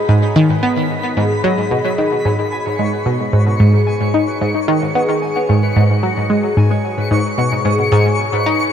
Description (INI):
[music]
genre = ambient, sequencer-driven space music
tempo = 111 BPM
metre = 4/4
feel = straight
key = G# minor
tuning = A4 = 443 Hz
[part]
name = concert harp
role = arpeggios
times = 0.0-8.7 s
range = D#4 to G#5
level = -22 LUFS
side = left 1 dB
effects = auto-pan, tape echo, shimmer reverb
[part]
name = twinkling granular texture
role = texture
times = 0.0-8.7 s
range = B5 to C#6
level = -24 LUFS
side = left 3 dB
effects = built-in reverb, shimmer reverb
[part]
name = analog pluck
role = riff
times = 0.1-8.6 s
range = G#2 to D#4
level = -14 LUFS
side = equal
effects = chorus, phaser, tape echo, shimmer reverb
[sound]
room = moderate huge ambient reverb, RT60 8.6 s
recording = cassette tape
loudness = -13 LUFS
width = side -8 dB against mid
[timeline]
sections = 0.0-8.7 A section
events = none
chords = 0.0 G#m